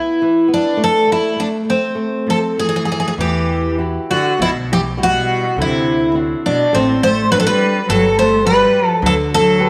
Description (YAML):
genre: fado-style ballad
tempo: 103 BPM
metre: 4/4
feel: rubato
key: E minor from 3.2 s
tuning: A4 = 440 Hz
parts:
  - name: picked twelve-string acoustic guitar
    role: melody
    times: 0.0-9.7 s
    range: C4 to C5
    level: -17 LUFS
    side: equal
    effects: none
  - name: flamenco guitar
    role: accompaniment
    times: 0.0-9.7 s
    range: B2 to B4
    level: -25 LUFS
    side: equal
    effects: none
  - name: rich cello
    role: second line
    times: 2.3-9.7 s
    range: A2 to A3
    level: -22 LUFS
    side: equal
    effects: none
  - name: upright bass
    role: bass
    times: 3.2-9.7 s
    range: G1 to E2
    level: -26 LUFS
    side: equal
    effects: none
room: wet echo chamber reverb, RT60 1.4 s, small room ambience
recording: none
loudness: -16 LUFS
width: mono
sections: 0.0-3.2 A section; 3.2-9.7 B section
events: none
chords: 0.0 E5; 0.8 N.C.; 3.2 Emadd9; 5.6 D7; 7.9 Gmaj7